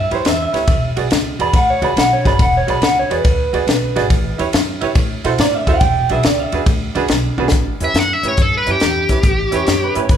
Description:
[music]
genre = electric blues shuffle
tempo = 140 BPM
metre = 4/4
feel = swing 67% on 8ths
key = A mixolydian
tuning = A4 = 436 Hz
[part]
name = electric guitar through a small old amp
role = second line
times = 0.0-6.6, 9.6-10.2 s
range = B4 to B5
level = -18 LUFS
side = right 1 dB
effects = none
[part]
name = upright bass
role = bass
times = 0.0-10.2 s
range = E1 to B2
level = -22 LUFS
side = equal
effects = none
[part]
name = bright upright piano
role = accompaniment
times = 0.1-10.0 s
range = C#4 to D5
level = -22 LUFS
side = right 6 dB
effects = none
[part]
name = compact cocktail drum kit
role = drums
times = 0.1-10.2 s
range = hi-hat, kick drum, ride cymbal, snare drum, toms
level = -17 LUFS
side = left 1 dB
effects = none
[part]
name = smooth overdriven lead guitar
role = melody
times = 7.8-9.9 s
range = G4 to F#5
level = -17 LUFS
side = left 1 dB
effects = none
[sound]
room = moderate large studio reverb, RT60 1.4 s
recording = band playing live in one room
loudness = -13 LUFS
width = side -9 dB against mid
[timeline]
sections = 0.0-7.5 A section; 7.5-10.2 B section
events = clean electric guitar solo 0.0-7.5; drum fill 7.3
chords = 0.0 A9 (rootless); 0.7 E9; 4.1 A9; 5.0 D9; 5.8 E9; 7.5 A9

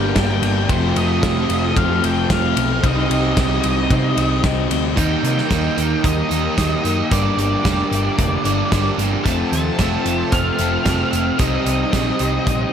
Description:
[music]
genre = rock, shoegaze and dream pop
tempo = 112 BPM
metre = 4/4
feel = straight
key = C dorian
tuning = A4 = 440 Hz
[part]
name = octave-fuzz lead guitar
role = melody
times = 0.0-12.7 s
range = C5 to A5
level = -25 LUFS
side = equal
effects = distortion, digital delay
[part]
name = warm analog pad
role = sustained chords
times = 0.0-12.7 s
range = C4 to A5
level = -29 LUFS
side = right 1 dB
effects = chorus
[part]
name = crunchy overdriven guitar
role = riff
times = 0.0-12.7 s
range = F2 to Eb4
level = -26 LUFS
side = equal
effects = none
[part]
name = overdriven electric guitar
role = riff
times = 0.0-12.7 s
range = F2 to Eb4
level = -24 LUFS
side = left 11 dB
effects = lush chorus
[part]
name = overdriven electric guitar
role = riff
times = 0.0-12.7 s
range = F2 to Eb4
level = -23 LUFS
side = right 9 dB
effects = reverse reverb
[part]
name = hollow-body short-scale picked electric bass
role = bass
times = 0.0-12.6 s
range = F1 to C3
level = -22 LUFS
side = equal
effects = none
[part]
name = loose indie drum kit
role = drums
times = 0.2-12.6 s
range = hi-hat, kick drum, ride cymbal, snare drum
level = -22 LUFS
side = equal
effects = none
[sound]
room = light reverb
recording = none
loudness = -16 LUFS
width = side -8 dB against mid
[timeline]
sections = 0.0-5.0 A section; 5.0-12.7 B section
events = none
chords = 0.0 Gm; 0.7 F; 2.8 Cm; 5.0 Eb; 7.1 Gm; 9.3 F; 11.4 Cm

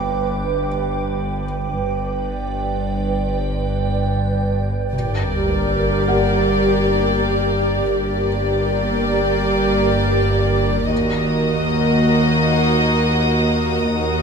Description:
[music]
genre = cinematic, suspense film score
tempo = free time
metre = none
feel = none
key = G harmonic minor from 4.9 s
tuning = A4 = 440 Hz
[part]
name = soft additive organ-like pad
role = sustained chords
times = 0.0-14.2 s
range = G4 to D6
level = -22 LUFS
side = right 2 dB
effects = ensemble chorus, built-in reverb
[part]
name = warm symphonic cello section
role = bass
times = 0.0-14.2 s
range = Eb2 to G2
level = -25 LUFS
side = right 1 dB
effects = none
[part]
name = warm symphonic double bass section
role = bass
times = 0.0-14.2 s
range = G1 to Eb2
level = -26 LUFS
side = right 3 dB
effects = none
[part]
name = deep rumbling drone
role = drone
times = 0.0-14.2 s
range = G1 to Eb2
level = -26 LUFS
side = left 1 dB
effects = built-in reverb
[part]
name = felt-muted upright piano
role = texture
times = 0.0-10.9 s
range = Eb5 to G5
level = -33 LUFS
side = left 5 dB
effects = none
[part]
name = warm symphonic violin section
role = melody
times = 4.9-14.2 s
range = D5 to Eb5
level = -24 LUFS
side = left 4 dB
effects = none
[part]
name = rich symphonic viola section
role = accompaniment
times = 4.9-14.2 s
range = Bb3 to G4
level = -22 LUFS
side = equal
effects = none
[part]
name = sub drop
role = sound effects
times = 4.9-7.9 s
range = none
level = -26 LUFS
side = left 1 dB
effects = none
[part]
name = warm chamber violin section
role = texture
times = 10.9-14.2 s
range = Bb5 to Eb6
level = -28 LUFS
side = left 2 dB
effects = none
[sound]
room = light reverb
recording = none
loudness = -16 LUFS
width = side -6 dB against mid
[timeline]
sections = 0.0-4.9 A section; 4.9-14.2 B section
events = impact 4.9-7.9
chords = 0.0 G; 4.9 Gm; 10.9 Ebm

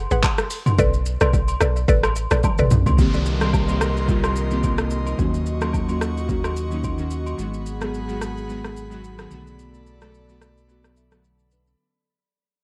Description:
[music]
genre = amapiano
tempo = 109 BPM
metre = 4/4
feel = swing 55% on 16ths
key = unclear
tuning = A4 = 440 Hz
[part]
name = deep log drum bass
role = bass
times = 0.0-3.0 s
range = Ab1 to C2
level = -23 LUFS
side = equal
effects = none
[part]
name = mallet-like synth pluck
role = stabs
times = 0.1-2.7 s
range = Ab4 to Gb5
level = -27 LUFS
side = equal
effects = chorus, digital delay
[part]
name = deep house drum kit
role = drums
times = 0.1-11.8 s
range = handclaps, hi-hat, kick drum, rim click, shaker, toms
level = -24 LUFS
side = equal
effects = overdrive
[part]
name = agogo bells and woodblock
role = percussion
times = 0.2-7.4 s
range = none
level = -34 LUFS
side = equal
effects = none
[part]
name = glassy digital keys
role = accompaniment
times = 3.0-11.9 s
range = D3 to Db6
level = -29 LUFS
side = equal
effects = chorus
[part]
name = airy breathy pad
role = sustained chords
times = 3.0-11.8 s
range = Gb4 to Db6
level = -36 LUFS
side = equal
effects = chorus, sidechain pumping
[part]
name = round analog bass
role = bass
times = 3.0-11.8 s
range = Ab1 to Eb2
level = -29 LUFS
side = equal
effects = none
[part]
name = downlifter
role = sound effects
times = 3.0-7.4 s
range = none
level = -38 LUFS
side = equal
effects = none
[sound]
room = digital ambience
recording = worn, warbling old tape, cassette tape, warbly pitch drift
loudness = -21 LUFS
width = mono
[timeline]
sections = 0.0-3.0 A section; 3.0-11.8 B section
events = drop 0.0-3.0; drum fill 2.4-3.0; fade-out 3.0-11.8; synth keys fill 5.7-7.4, 10.7-11.8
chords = 0.0 Abm7; 0.5 Bm7; 3.0 Cm7; 5.2 Ebm7; 7.4 Abm7; 9.3 Bm7

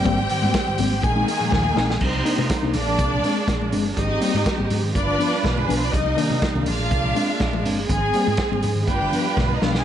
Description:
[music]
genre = disco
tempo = 122 BPM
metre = 4/4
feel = straight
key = C minor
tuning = A4 = 437 Hz
[part]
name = rich studio string section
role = second line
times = 0.0-9.8 s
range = Ab3 to Ab5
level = -25 LUFS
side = left 1 dB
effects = plate reverb
[part]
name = mellow tine electric piano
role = accompaniment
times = 0.0-9.8 s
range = G2 to Eb4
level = -25 LUFS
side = left 3 dB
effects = medium stereo tremolo, plate reverb
[part]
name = warm studio string section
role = sustained chords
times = 0.0-9.8 s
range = C3 to B4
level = -26 LUFS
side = right 5 dB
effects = plate reverb
[part]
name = congas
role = percussion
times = 0.0-9.7 s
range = none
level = -32 LUFS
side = left 7 dB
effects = none
[part]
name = hollow-body short-scale fingered electric bass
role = bass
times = 0.1-9.8 s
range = G1 to C3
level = -25 LUFS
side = right 1 dB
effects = none
[part]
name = vintage drum kit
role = drums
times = 0.1-9.8 s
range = crash cymbal, hi-hat, kick drum, snare drum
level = -26 LUFS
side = right 1 dB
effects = none
[sound]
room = light reverb, small room ambience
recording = nothing above 10.8 kHz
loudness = -19 LUFS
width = side -10 dB against mid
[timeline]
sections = 0.0-2.0 A section; 2.0-9.8 B section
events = drum fill 1.5-2.0, 9.4-9.8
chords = 0.0 Abmaj7; 1.0 Bb9sus4; 2.0 Cm7; 2.7 Bb7; 4.0 Abmaj9; 4.9 G7; 5.9 Cm7; 6.7 Bb7; 7.9 Abmaj9; 8.9 G7

